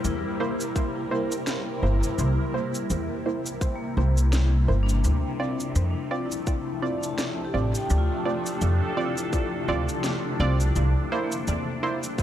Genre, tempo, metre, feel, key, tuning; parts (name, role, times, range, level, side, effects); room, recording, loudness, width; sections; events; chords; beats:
ambient dub; 84 BPM; 4/4; swing 57% on 16ths; D minor; A4 = 440 Hz
granular cloud pad; sustained chords; 0.0-12.2 s; C3 to E5; -30 LUFS; equal; built-in reverb, phaser
vibraphone with hard mallets; arpeggios; 0.0-12.2 s; Bb3 to A5; -34 LUFS; left 5 dB; dub echo
upright bass; bass; 0.0-11.7 s; G1 to F2; -23 LUFS; equal
electronic cabasa and snare drum; drums; 0.0-12.2 s; -34 LUFS; equal; dub echo
filtered dub chord stab; stabs; 0.4-12.0 s; Bb3 to D5; -31 LUFS; right 3 dB; chorus, vintage 12-bit sampler grit, dub echo
electronic kick drum; drums; 0.8-12.2 s; -26 LUFS; equal
backwards swelling texture; texture; 11.7-12.2 s; G4; -48 LUFS; right 2 dB
light reverb; -23 LUFS; side -11 dB against mid
0.0-12.2 A section
0.0 C7; 5.0 Dm7; 10.8 C7
0.04 0.76 1.47 | 2.19 2.90 3.61 4.33 | 5.04 5.76 6.47 7.18 | 7.90 8.61 9.33 10.04 | 10.76 11.47 12.19